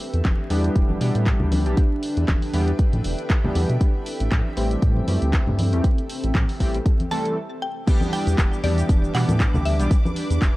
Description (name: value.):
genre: deep house.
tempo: 118 BPM.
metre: 4/4.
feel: swing 56% on 16ths.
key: E minor.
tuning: A4 = 440 Hz.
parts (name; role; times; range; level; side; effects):
airy breathy pad; sustained chords; 0.0-10.6 s; C4 to E5; -34 LUFS; equal; chorus, sidechain pumping.
granular cloud pad; texture; 0.0-10.6 s; C4 to B5; -33 LUFS; equal; built-in reverb, sidechain pumping.
round analog bass; bass; 0.1-10.5 s; E1 to B2; -22 LUFS; equal; sidechain pumping.
punchy analog drum machine; drums; 0.1-10.5 s; crash cymbal, handclaps, hi-hat, shaker; -32 LUFS; equal; none.
electronic kick drum; drums; 0.2-10.5 s; none; -20 LUFS; equal; none.
congas; percussion; 0.2-10.1 s; none; -28 LUFS; left 1 dB; sidechain pumping on perc.
chorused polysynth; stabs; 0.5-9.9 s; E3 to A4; -27 LUFS; equal; vintage 12-bit sampler grit, sidechain pumping, tape echo.
mallet-like synth pluck; melody; 7.1-10.4 s; D5 to A5; -30 LUFS; equal; chorus, tape echo.
warm studio violin section; texture; 7.9-10.6 s; D6; -39 LUFS; left 3 dB; sidechain pumping.
room: light reverb.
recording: vinyl crackle.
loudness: -19 LUFS.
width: side -18 dB against mid.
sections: 0.0-7.9 A section; 7.9-10.6 B section.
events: stop 7.4-7.9; drop 7.9-10.6.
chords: 0.0 Em7; 3.8 Am7; 7.9 Em7.